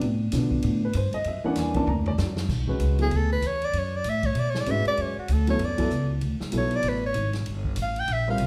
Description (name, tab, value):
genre	modal jazz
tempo	193 BPM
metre	4/4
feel	swing 61% on 8ths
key	B dorian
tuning	A4 = 439 Hz
part	upright bass	bass	0.0-8.5 s	G1 to B2	-29 LUFS	equal	none
part	vintage drum kit	drums	0.0-8.5 s	crash cymbal, hi-hat, kick drum, ride cymbal, snare drum, toms	-36 LUFS	equal	none
part	warm upright piano	accompaniment	0.3-8.5 s	D3 to A#5	-30 LUFS	equal	none
part	clear soprano saxophone	melody	3.0-8.5 s	F#4 to G5	-30 LUFS	equal	none
room	wet large studio reverb, RT60 1.1 s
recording	heard from further back in the room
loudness	-26 LUFS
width	mono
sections	0.0-2.5 A section; 2.5-8.5 A section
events	drum fill 1.9-2.5; soprano saxophone solo 2.5-8.5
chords	0.0 D7sus4; 1.3 F#7b13; 2.5 Bm11; 7.5 Gm11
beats	| 0.02 0.33 0.64 0.95 | 1.26 1.57 1.88 2.19 | 2.49 2.80 3.11 3.42 | 3.73 4.04 4.36 4.67 | 4.97 5.29 5.60 5.91 | 6.22 6.53 6.84 7.15 | 7.46 7.77 8.09 8.40